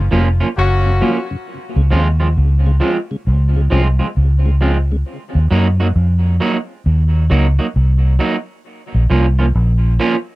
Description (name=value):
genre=reggae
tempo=67 BPM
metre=4/4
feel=swing 64% on 16ths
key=unclear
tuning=A4 = 440 Hz
part: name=warm horn section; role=second line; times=0.0-1.3 s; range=Gb3 to Gb4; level=-21 LUFS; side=left 4 dB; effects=tape echo
part: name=vintage muted fingered electric bass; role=bass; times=0.0-10.0 s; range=F1 to Gb2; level=-13 LUFS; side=equal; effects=none
part: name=electric guitar at the edge of break-up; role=accompaniment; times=0.1-10.2 s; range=F3 to Gb4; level=-20 LUFS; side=right 3 dB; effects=tape echo
part: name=mellow tonewheel organ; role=accompaniment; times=0.1-5.0 s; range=Gb2 to F4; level=-26 LUFS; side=left 2 dB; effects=slow rotary speaker, tape echo
room=little or no reverb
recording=dry, close 1970s-style studio recording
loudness=-13 LUFS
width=side -19 dB against mid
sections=0.0-5.1 A section; 5.1-10.4 B section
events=none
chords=0.0 Gbmaj7; 1.5 Dbmaj7; 5.1 Ebm; 8.6 Bbm